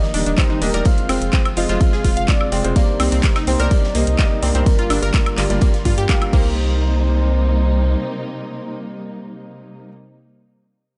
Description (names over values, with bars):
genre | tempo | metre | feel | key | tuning
progressive house | 126 BPM | 4/4 | straight | C minor | A4 = 440 Hz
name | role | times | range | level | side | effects
soft octave-layered synth lead | melody | 0.0-9.9 s | Bb4 to F5 | -30 LUFS | equal | chorus, digital delay
dark studio string section | sustained chords | 0.0-9.9 s | C3 to F4 | -30 LUFS | equal | sidechain pumping
oversized low-tuned drum kit | drums | 0.0-6.2 s | hi-hat, snare drum | -38 LUFS | equal | none
analog pluck | arpeggios | 0.1-6.8 s | Bb3 to F5 | -28 LUFS | equal | chorus, sidechain pumping, digital delay
warm baby grand piano | stabs | 0.1-9.9 s | G2 to F5 | -28 LUFS | equal | sidechain pumping, digital delay
round analog bass | bass | 0.1-8.0 s | Eb1 to G2 | -21 LUFS | equal | sidechain pumping
house drum kit | drums | 0.1-6.4 s | crash cymbal, handclaps, hi-hat, woodblock | -28 LUFS | equal | studio reverb
electronic kick drum | drums | 0.4-6.4 s | none | -19 LUFS | equal | studio reverb
room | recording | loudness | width
small room ambience | nothing above 11.0 kHz | -17 LUFS | mono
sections
0.0-6.6 A section; 6.6-10.4 B section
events
drop 0.0-6.6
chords
0.0 Ebmaj7; 0.9 Fm; 2.8 Cm7; 4.7 Gm7; 6.3 Cm7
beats
0.38 | 0.85 1.33 1.81 2.28 | 2.76 3.23 3.71 4.19 | 4.66 5.14 5.62 6.09 | 6.57 7.04 7.52 8.00 | 8.47 8.95 9.43